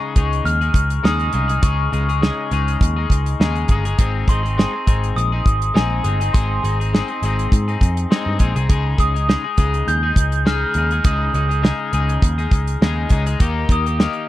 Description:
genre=indie pop, bedroom pop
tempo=102 BPM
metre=4/4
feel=swing 55% on 16ths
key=unclear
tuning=A4 = 441 Hz
part: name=glockenspiel with rubber mallets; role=melody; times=0.0-14.3 s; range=Ab5 to G6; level=-24 LUFS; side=equal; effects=lush chorus, tape echo
part: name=clean electric guitar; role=accompaniment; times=0.0-14.3 s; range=Db3 to Ab4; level=-24 LUFS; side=left 5 dB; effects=analog chorus, vibrato effect
part: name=vintage muted picked electric bass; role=bass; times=0.2-14.1 s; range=G1 to Ab2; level=-20 LUFS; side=equal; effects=none
part: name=damped 70s drum kit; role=drums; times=0.2-14.3 s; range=hi-hat, kick drum, snare drum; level=-16 LUFS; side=equal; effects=none
room=little or no reverb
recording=dry, close 1970s-style studio recording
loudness=-16 LUFS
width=side -15 dB against mid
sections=0.0-14.3 A section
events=none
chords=0.0 Dbsus2; 4.0 Ab; 8.7 Dbsus2; 13.4 Eb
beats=0.46 1.05 | 1.64 2.22 2.81 3.40 | 3.99 4.58 5.17 5.75 | 6.34 6.93 7.52 8.11 | 8.70 9.28 9.87 10.46 | 11.05 11.64 12.22 12.81 | 13.40 13.99

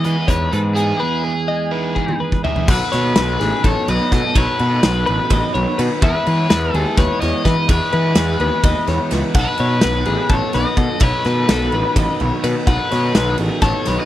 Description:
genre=math rock and midwest emo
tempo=252 BPM (eighths)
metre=7/8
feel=straight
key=unclear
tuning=A4 = 436 Hz
part: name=overdriven electric guitar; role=melody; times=0.0-14.1 s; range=G#4 to D#5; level=-22 LUFS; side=left 1 dB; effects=slapback echo
part: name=clean electric guitar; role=accompaniment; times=0.0-2.7 s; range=E2 to G#4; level=-24 LUFS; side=right 6 dB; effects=none
part: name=twelve-string electric guitar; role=arpeggios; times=0.0-14.1 s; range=G#4 to F#5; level=-23 LUFS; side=left 5 dB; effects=none
part: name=overdriven electric guitar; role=riff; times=0.0-14.1 s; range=B2 to A4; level=-24 LUFS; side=right 2 dB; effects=none
part: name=fuzz picked electric bass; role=bass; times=0.0-14.0 s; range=A1 to E3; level=-20 LUFS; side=equal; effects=overdrive
part: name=loose indie drum kit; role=drums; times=0.0-14.0 s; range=crash cymbal, hi-hat, kick drum, ride cymbal, snare drum, toms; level=-20 LUFS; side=equal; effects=none
room=little or no reverb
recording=none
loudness=-15 LUFS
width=side -13 dB against mid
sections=0.0-2.7 A section; 2.7-14.1 B section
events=drum fill 2.0-2.7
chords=0.0 Emaj7; 2.7 B7; 6.0 Emaj7; 9.4 B7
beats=0.05 0.29 0.53 0.77 | 1.01 1.25 1.49 1.73 1.97 2.21 2.45 | 2.69 2.93 3.17 3.40 3.64 3.88 4.12 | 4.36 4.60 4.84 5.07 5.31 5.55 5.79 | 6.03 6.26 6.50 6.74 6.98 7.22 7.45 | 7.69 7.93 8.17 8.40 8.64 8.88 9.12 | 9.36 9.59 9.83 10.07 10.30 10.54 10.78 | 11.02 11.26 11.49 11.73 11.97 12.20 12.44 | 12.68 12.92 13.15 13.39 13.63 13.86

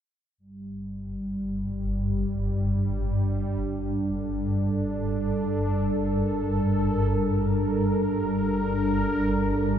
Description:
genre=dark ambient drone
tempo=free time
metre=none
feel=none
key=unclear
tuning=A4 = 440 Hz
part: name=sweeping resonant pad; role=sustained chords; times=0.4-9.8 s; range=G3 to Bb4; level=-26 LUFS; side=right 1 dB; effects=chorus
part: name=swarming drone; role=drone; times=0.8-9.8 s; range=G1 to G2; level=-28 LUFS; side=equal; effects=built-in reverb
room=moderate huge ambient reverb, RT60 7.3 s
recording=none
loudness=-24 LUFS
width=side -9 dB against mid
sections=0.4-9.8 A section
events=none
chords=0.4 Gmadd9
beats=free time

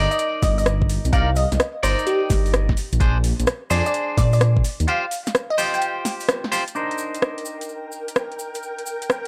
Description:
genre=UK garage, two-step garage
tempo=128 BPM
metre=4/4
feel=swing 67% on 16ths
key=C minor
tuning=A4 = 440 Hz
part: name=glassy wavetable pluck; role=melody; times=0.0-6.2 s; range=G4 to G5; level=-27 LUFS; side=equal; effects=chorus, tape echo
part: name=clean electric guitar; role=stabs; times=0.0-9.3 s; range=D4 to D5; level=-28 LUFS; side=equal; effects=low-pass filter
part: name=dark detuned saw bass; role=bass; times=0.0-4.9 s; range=G1 to Bb2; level=-22 LUFS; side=equal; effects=none
part: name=garage drum kit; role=drums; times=0.1-9.3 s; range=hi-hat, rim click, snare drum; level=-27 LUFS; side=equal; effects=overdrive
part: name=cabasa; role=percussion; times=0.1-9.2 s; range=none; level=-39 LUFS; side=equal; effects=none
part: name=electronic kick drum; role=drums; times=0.4-4.6 s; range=none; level=-23 LUFS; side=equal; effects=overdrive
part: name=soft string machine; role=sustained chords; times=6.8-9.3 s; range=Bb4 to G5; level=-34 LUFS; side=equal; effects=ensemble chorus, sidechain pumping
room=moderate studio reverb, RT60 0.5 s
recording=dry, gritty hardware recording, cassette tape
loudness=-21 LUFS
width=mono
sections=0.0-6.8 A section; 6.8-9.3 B section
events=break 4.9-6.8; band accent 6.3; filter sweep on clean electric guitar 6.8-9.3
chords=0.0 Cm9; 2.8 Bb9; 4.6 Eb69 (rootless); 6.8 Cm9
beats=0.19 0.66 | 1.13 1.60 2.07 2.54 | 3.00 3.47 3.94 4.41 | 4.88 5.35 5.82 6.29 | 6.75 7.22 7.69 8.16 | 8.63 9.10

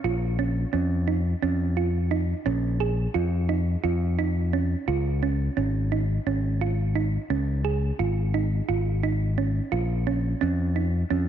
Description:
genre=progressive instrumental, progressive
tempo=173 BPM (eighths)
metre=7/8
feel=straight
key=Bb minor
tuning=A4 = 438 Hz
part: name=thumb-piano-like synth pluck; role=arpeggios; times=0.0-11.3 s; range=Db4 to Ab4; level=-28 LUFS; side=right 9 dB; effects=chorus
part: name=fingered electric bass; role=bass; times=0.0-11.3 s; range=Ab1 to F2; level=-24 LUFS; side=left 1 dB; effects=none
room=light reverb, digital ambience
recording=1960s-style stereo, nothing above 7.9 kHz, faint mains hum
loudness=-23 LUFS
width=side -9 dB against mid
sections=0.0-11.3 A section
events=none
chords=0.0 Bbm; 4.9 Db; 9.7 Bbm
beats=| 0.04 0.38 0.73 1.07 1.42 1.76 2.11 | 2.46 2.80 3.15 3.49 3.84 4.19 4.53 | 4.88 5.22 5.57 5.92 6.26 6.61 6.96 | 7.30 7.65 8.00 8.34 8.69 9.04 9.38 | 9.73 10.08 10.43 10.77 11.12

